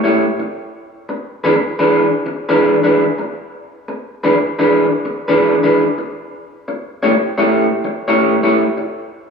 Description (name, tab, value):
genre	blues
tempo	86 BPM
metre	4/4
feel	swing 66% on 8ths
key	E mixolydian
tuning	A4 = 440 Hz
part	electric guitar through a small old amp	solo	0.0-8.8 s	E3 to C#5	-14 LUFS	equal	spring reverb, slapback echo
room	moderate club ambience, RT60 0.5 s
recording	live gig heard through the venue's PA, club reverb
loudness	-13 LUFS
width	side -5 dB against mid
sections	0.0-9.3 A section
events	none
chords	0.0 A7; 0.9 E7; 6.5 A7